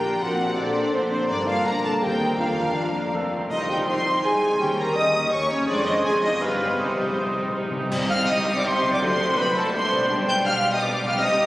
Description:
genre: classical, dramatic, fast romantic movement for symphony orchestra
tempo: 165 BPM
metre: 3/4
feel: straight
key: Bb major, C minor from 3.5 s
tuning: A4 = 440 Hz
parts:
  - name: rich studio violin section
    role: melody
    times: 0.0-11.5 s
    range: B4 to G6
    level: -27 LUFS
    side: equal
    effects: none
  - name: concert flute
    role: second line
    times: 0.0-11.5 s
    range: A4 to Eb6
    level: -29 LUFS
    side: equal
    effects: none
  - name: dark cor anglais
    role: second line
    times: 0.0-7.7 s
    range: A4 to F5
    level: -30 LUFS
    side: right 1 dB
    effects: none
  - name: rich symphonic violin section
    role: second line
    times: 0.0-11.5 s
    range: D4 to Eb6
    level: -31 LUFS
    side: equal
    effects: none
  - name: warm clarinet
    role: second line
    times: 0.0-11.5 s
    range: C4 to G5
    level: -29 LUFS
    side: equal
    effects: none
  - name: clear symphonic viola section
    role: accompaniment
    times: 0.0-11.5 s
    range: G3 to F4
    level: -32 LUFS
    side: right 1 dB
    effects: none
  - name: mellow French horn section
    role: sustained chords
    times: 0.0-11.3 s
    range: F#3 to Eb5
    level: -28 LUFS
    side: equal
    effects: none
  - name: concert harp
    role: arpeggios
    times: 0.0-11.5 s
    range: F2 to D5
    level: -30 LUFS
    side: left 1 dB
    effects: none
  - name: clear symphonic cello section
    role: bass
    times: 0.0-11.5 s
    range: C2 to C3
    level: -33 LUFS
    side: right 1 dB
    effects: none
  - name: warm symphonic double bass section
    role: bass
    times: 0.0-11.5 s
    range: F1 to Eb2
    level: -37 LUFS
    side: equal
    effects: none
  - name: triangle, cymbal swell, clash cymbals and concert bass drum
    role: percussion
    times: 3.5-8.6 s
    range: none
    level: -36 LUFS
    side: equal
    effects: none
  - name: timpani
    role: percussion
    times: 6.8-7.9 s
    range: C3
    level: -39 LUFS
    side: right 1 dB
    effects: none
room: wet church reverb, RT60 4.0 s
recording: recorded on a phone in the room, studio reverb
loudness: -20 LUFS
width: side -17 dB against mid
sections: 0.0-7.9 A section; 7.9-11.5 B section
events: timpani fill 6.8-7.9; band accent 7.9-8.3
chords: 0.2 D7/Bb; 1.3 Gm7; 2.0 Cm7/Eb; 2.4 Bb/F; 3.1 F; 3.5 Cm; 4.6 Eb7; 5.7 Fm7; 6.4 G7; 6.8 Cm; 9.0 D7/C; 10.1 G/B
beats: | 0.22 0.58 0.94 | 1.29 1.66 2.02 | 2.39 2.76 3.14 | 3.51 3.87 4.23 | 4.60 4.96 5.32 | 5.68 6.04 6.41 | 6.78 7.16 7.53 | 7.91 8.28 8.64 | 9.00 9.37 9.73 | 10.10 10.46 10.82 | 11.18

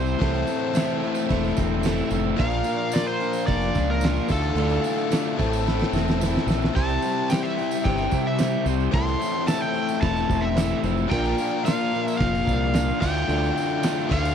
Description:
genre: classic rock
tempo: 110 BPM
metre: 4/4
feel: straight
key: unclear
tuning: A4 = 440 Hz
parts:
  - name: overdriven slide guitar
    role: melody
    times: 0.0-14.3 s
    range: A4 to C6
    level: -28 LUFS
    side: right 1 dB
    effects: none
  - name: picked plugged-in swing-style acoustic guitar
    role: accompaniment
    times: 0.0-14.3 s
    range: A2 to C5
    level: -32 LUFS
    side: right 9 dB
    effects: none
  - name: bright tonewheel organ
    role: sustained chords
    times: 0.0-14.3 s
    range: C4 to F5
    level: -36 LUFS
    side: right 2 dB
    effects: none
  - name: biting overdriven guitar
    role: riff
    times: 0.0-14.3 s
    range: D2 to C5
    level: -26 LUFS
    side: left 14 dB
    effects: none
  - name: raw garage guitar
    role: riff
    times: 0.0-14.3 s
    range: D2 to C5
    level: -32 LUFS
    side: right 13 dB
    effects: overdrive
  - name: growling fingered electric bass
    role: bass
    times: 0.0-14.3 s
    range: E1 to C3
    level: -26 LUFS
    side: right 1 dB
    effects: overdrive
  - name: tambourine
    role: percussion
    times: 0.1-14.3 s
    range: none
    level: -44 LUFS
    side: right 12 dB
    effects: none
  - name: cloth-damped thuddy drum kit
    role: drums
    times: 0.2-14.2 s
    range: crash cymbal, kick drum, snare drum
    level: -28 LUFS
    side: right 1 dB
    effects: none
room: little or no reverb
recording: dry, close 1970s-style studio recording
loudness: -21 LUFS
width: side -8 dB against mid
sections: 0.0-14.3 A section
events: drum fill 5.7-6.7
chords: 0.2 Am/C; 2.4 Bb; 4.3 Dm; 5.4 Am; 6.7 C; 8.9 Am/C; 11.1 Bb; 13.0 Dm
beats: | 0.20 0.74 1.29 1.83 | 2.38 2.93 3.47 4.02 | 4.56 5.11 5.66 6.20 | 6.75 7.29 7.84 8.38 | 8.93 9.47 10.02 10.56 | 11.11 11.65 12.20 12.74 | 13.28 13.83

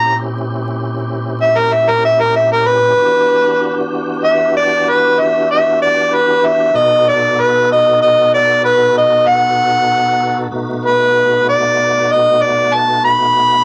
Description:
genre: blues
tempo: 64 BPM (dotted quarters)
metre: 12/8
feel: straight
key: unclear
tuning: A4 = 437 Hz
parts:
  - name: warm harmonica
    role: melody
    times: 0.0-13.6 s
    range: A#4 to B5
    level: -13 LUFS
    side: equal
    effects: overdrive
  - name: tonewheel organ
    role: sustained chords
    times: 0.0-13.6 s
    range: A#2 to A4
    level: -22 LUFS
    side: equal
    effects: slow rotary speaker, chorus vibrato
room: moderate club reverb, RT60 0.6 s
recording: vinyl crackle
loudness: -13 LUFS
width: mono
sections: 0.0-13.6 A section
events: harmonica solo 0.0-13.6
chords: 0.0 A#dim7; 3.0 Em9; 6.7 B7#9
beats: 0.14 1.08 2.03 | 2.97 3.92 4.86 5.80 | 6.75 7.69 8.63 9.57 | 10.52 11.46 12.40 13.35

